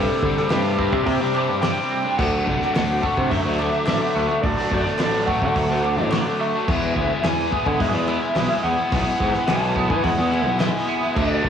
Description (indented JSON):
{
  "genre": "indie rock",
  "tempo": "107 BPM",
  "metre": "4/4",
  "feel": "straight",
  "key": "unclear",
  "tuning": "A4 = 443 Hz",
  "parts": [
    { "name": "lead guitar through a small cranked amp", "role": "melody", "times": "0.0-11.5 s", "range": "G4 to A5", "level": "-25 LUFS", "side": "left 1 dB", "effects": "overdrive, tape echo" },
    { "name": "crunchy overdriven guitar", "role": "riff", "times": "0.0-11.5 s", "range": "C3 to F#4", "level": "-25 LUFS", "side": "left 5 dB", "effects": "spring reverb, cassette tape" },
    { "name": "twangy electric guitar", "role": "riff", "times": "0.0-11.5 s", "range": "C3 to E4", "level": "-27 LUFS", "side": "right 6 dB", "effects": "ensemble chorus, cassette tape, tape echo" },
    { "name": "fuzz picked electric bass", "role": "bass", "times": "0.0-11.5 s", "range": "A1 to E3", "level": "-24 LUFS", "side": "right 1 dB", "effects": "overdrive" },
    { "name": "loose indie drum kit", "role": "drums", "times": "0.2-11.5 s", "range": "crash cymbal, hi-hat, kick drum, snare drum", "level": "-27 LUFS", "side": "equal", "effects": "cassette tape" },
    { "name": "group handclap", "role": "percussion", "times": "0.5-10.7 s", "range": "none", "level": "-38 LUFS", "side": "left 8 dB", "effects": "none" }
  ],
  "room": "small room ambience",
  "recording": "home recording on cassette",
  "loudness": "-18 LUFS",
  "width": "side -8 dB against mid",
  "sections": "0.0-11.5 A section",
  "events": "none",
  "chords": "0.0 Csus2; 2.2 D; 6.7 E",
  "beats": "0.51 1.07 1.63 | 2.19 2.75 3.31 3.88 | 4.44 5.00 5.56 6.12 | 6.68 7.24 7.80 8.36 | 8.92 9.48 10.04 10.60 | 11.16"
}